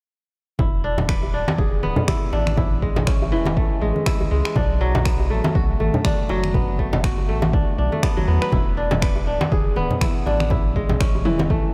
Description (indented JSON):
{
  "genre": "afro house",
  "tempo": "121 BPM",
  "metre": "4/4",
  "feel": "swing 57% on 16ths",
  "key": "unclear",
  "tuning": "A4 = 440 Hz",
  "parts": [
    { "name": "kora", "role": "arpeggios", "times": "0.6-11.7 s", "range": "E3 to B4", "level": "-27 LUFS", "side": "equal", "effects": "sidechain pumping, analog delay" },
    { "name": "round analog bass", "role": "bass", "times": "0.6-11.6 s", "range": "D1 to E2", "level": "-26 LUFS", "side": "equal", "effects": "sidechain pumping" },
    { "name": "electronic kick drum", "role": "drums", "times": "0.6-11.6 s", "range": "none", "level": "-24 LUFS", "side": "equal", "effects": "small room reverb" },
    { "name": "congas", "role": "percussion", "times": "0.6-11.5 s", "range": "none", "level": "-28 LUFS", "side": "equal", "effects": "none" },
    { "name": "djembe", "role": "percussion", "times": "1.0-11.5 s", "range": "none", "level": "-34 LUFS", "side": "equal", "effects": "none" },
    { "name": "deep house drum kit", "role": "drums", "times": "1.1-11.4 s", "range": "finger snaps, toms", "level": "-34 LUFS", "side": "equal", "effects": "small room reverb" }
  ],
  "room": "moderate church reverb, RT60 3.4 s",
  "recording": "dreamy mix soaked in reverb",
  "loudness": "-20 LUFS",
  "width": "mono",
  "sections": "0.6-11.7 A section",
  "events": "none",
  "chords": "0.6 E7sus4; 2.6 Amaj7; 4.6 Bm7; 8.5 E7sus4; 10.5 Amaj7"
}